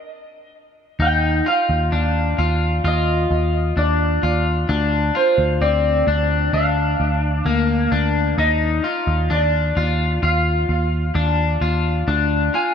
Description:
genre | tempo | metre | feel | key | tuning
dream pop | 65 BPM | 4/4 | straight | unclear | A4 = 441 Hz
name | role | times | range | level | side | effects
clean lap steel guitar | melody | 0.0-12.7 s | C5 to Ab5 | -23 LUFS | right 1 dB | lush chorus, ping-pong delay
electric guitar at the edge of break-up | arpeggios | 1.0-12.7 s | Bb3 to F4 | -21 LUFS | left 4 dB | wide subtle chorus, ping-pong delay
vintage muted picked electric bass | bass | 1.0-12.5 s | D2 to Eb2 | -20 LUFS | equal | none
room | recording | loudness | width
moderate plate reverb, RT60 3.1 s | dreamy mix soaked in reverb | -16 LUFS | side -7 dB against mid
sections
0.0-1.0 A section; 1.0-12.7 B section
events
stop 0.0-1.0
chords
0.0 N.C.; 1.0 Ebsus2; 4.7 Bb/D; 8.4 Ebsus2; 12.1 Bb/D (rootless)

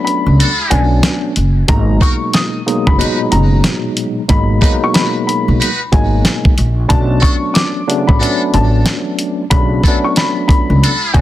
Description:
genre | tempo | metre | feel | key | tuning
hip hop, boom-bap hip-hop | 92 BPM | 4/4 | swing 62% on 16ths | G# minor | A4 = 438 Hz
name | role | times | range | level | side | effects
dark upright piano | melody | 0.0-11.2 s | G#5 to D#6 | -20 LUFS | left 3 dB | high-pass filter, low-pass filter, digital delay
mellow tine electric piano | accompaniment | 0.0-11.2 s | A#2 to D#4 | -18 LUFS | equal | medium stereo tremolo, high-pass filter, low-pass filter
dusty soul sampler-style drum kit | drums | 0.1-11.2 s | hi-hat, kick drum, snare drum | -13 LUFS | equal | none
upright bass | bass | 0.3-11.2 s | F#1 to C#2 | -13 LUFS | equal | none
muted trumpet section | stabs | 0.4-11.2 s | D4 to B4 | -21 LUFS | equal | high-pass filter, low-pass filter, digital delay
room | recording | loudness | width
small room ambience | dense, heavily limited modern master | -11 LUFS | side -14 dB against mid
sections
0.0-11.2 A section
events
break 0.0-1.7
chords
0.0 Bm9; 1.7 G#m9; 6.9 Bm9

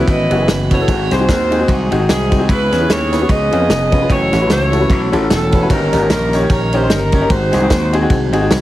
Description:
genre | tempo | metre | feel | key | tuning
uptempo gospel | 150 BPM | 4/4 | swing 57% on 8ths | unclear | A4 = 440 Hz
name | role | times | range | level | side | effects
clear saxophone section | melody | 0.0-8.1 s | B#3 to D#5 | -18 LUFS | equal | none
clear grand piano | accompaniment | 0.0-8.6 s | G2 to C#5 | -19 LUFS | left 2 dB | none
mellow tonewheel organ | sustained chords | 0.0-8.6 s | D#3 to G#4 | -22 LUFS | right 1 dB | slow rotary speaker
gritty slap bass | bass | 0.1-8.6 s | E1 to E#2 | -18 LUFS | equal | overdrive
warm soul drum kit | drums | 0.1-8.6 s | kick drum, ride cymbal, snare drum | -18 LUFS | equal | none
room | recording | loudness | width
light reverb | heavily compressed radio sound, multiband compression | -12 LUFS | side -15 dB against mid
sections
0.0-8.6 A section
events
none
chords
0.0 F#7sus4; 0.9 G#7; 2.5 C#m7; 3.3 C#7; 4.1 F#m7; 5.7 D#7/G; 7.3 G#7

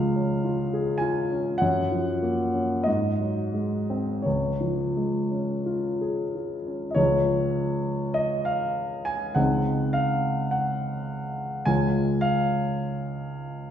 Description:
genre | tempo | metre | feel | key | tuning
classical, romantic nocturne for solo piano | 42-56 BPM | 4/4 | rubato | Db major | A4 = 441 Hz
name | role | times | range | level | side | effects
warm grand piano | solo | 0.0-13.7 s | Db2 to Ab5 | -23 LUFS | equal | none
room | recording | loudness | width
wet recital hall reverb, RT60 1.5 s | heard from further back in the room | -23 LUFS | side -9 dB against mid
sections
0.0-7.0 A section; 7.0-13.7 B section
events
none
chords
0.0 Db; 1.6 Gbmaj7; 2.9 Ab7; 4.3 Db; 9.4 Ab/Db; 11.7 Db

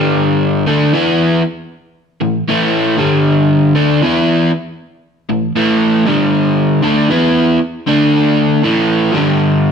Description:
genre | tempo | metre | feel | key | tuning
rock | 78 BPM | 4/4 | swing 64% on 8ths | unclear | A4 = 443 Hz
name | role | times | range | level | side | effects
crunchy overdriven guitar | solo | 0.0-9.7 s | G2 to E4 | -11 LUFS | equal | none
room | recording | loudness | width
wet large studio reverb, RT60 1.1 s | band playing live in one room | -11 LUFS | side -6 dB against mid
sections
0.0-9.7 A section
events
none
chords
0.0 G5; 0.5 A5; 2.9 G5; 3.6 A5; 5.9 G5; 6.7 A5; 7.9 D5; 8.6 A5; 9.0 G5

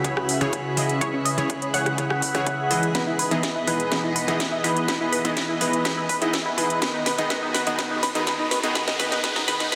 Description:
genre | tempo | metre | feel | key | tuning
progressive house | 124 BPM | 4/4 | straight | unclear | A4 = 440 Hz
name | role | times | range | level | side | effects
lush unison pad | sustained chords | 0.0-9.8 s | B2 to E5 | -33 LUFS | equal | chorus, phaser, sidechain pumping
tight sequenced synth | arpeggios | 0.0-9.8 s | C#4 to F#5 | -28 LUFS | equal | chorus, phaser, sidechain pumping, delay
unison pluck | stabs | 0.0-9.8 s | C#3 to D#5 | -29 LUFS | equal | sidechain pumping, delay
electronic kick drum | drums | 0.0-9.8 s | none | -36 LUFS | equal | none
house drum kit | drums | 0.0-9.8 s | hi-hat, rim click, snare drum | -30 LUFS | equal | high-pass filter on hats, high-pass filter on snare
drifting glass-harmonics texture | texture | 0.0-9.8 s | B4 to B5 | -38 LUFS | equal | none
riser and reverse cymbal | sound effects | 6.0-9.8 s | none | -37 LUFS | equal | none
room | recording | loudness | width
wet lush hall reverb, RT60 1.8 s, digital ambience | dense, heavily limited modern master, high-pass filter | -23 LUFS | mono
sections
0.0-9.8 A section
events
build-up 0.0-9.8; filter sweep 0.0-9.8; drum fill 2.9-9.8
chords
0.0 C#m; 2.9 Emaj7; 6.8 B

